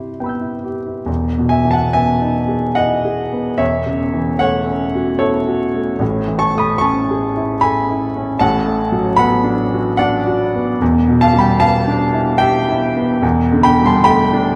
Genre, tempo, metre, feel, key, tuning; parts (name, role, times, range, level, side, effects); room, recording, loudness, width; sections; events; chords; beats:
classical, impressionist solo piano; 74 BPM; 3/4; rubato; E major; A4 = 435 Hz
clear grand piano; solo; 0.0-14.6 s; E1 to G6; -16 LUFS; equal
moderate scoring stage reverb, RT60 1.8 s; vinyl crackle, lossy compression artefacts; -16 LUFS; mono
0.0-1.1 A section; 1.1-14.6 B section
0.0 Cmaj7; 1.1 Emaj7; 3.6 F#m7/E; 6.0 Amaj7; 8.4 Bm7/A; 10.8 Em7; 13.2 F69/E (rootless)
0.16 | 1.08 1.95 2.78 | 3.60 4.41 5.22 | 6.01 6.82 7.62 | 8.41 9.20 10.00 | 10.81 11.62 12.42 | 13.23 14.04